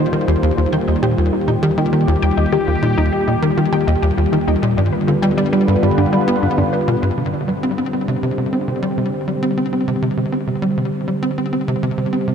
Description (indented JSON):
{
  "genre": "ambient, sequencer-driven space music",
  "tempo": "100 BPM",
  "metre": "4/4",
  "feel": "straight",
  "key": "Eb major",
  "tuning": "A4 = 440 Hz",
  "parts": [
    { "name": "sweeping resonant pad", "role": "sustained chords", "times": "0.0-12.3 s", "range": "D3 to C5", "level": "-19 LUFS", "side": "equal", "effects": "chorus" },
    { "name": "wide unison pluck", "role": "arpeggios", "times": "0.0-7.1 s", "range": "D4 to G5", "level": "-24 LUFS", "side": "moving between left 6 dB and right 2 dB", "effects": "auto-pan, ping-pong delay" },
    { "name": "tight sequencer bass", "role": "riff", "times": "0.0-12.3 s", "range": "Eb2 to C4", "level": "-18 LUFS", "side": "equal", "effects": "wide subtle chorus, ping-pong delay" }
  ],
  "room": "wet huge ambient reverb, RT60 8.1 s",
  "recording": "dark, warm production",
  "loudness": "-15 LUFS",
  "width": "side -7 dB against mid",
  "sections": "0.0-7.2 A section; 7.2-12.3 B section",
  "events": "none",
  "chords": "0.0 Ebadd9; 4.8 G7; 7.2 Csus2"
}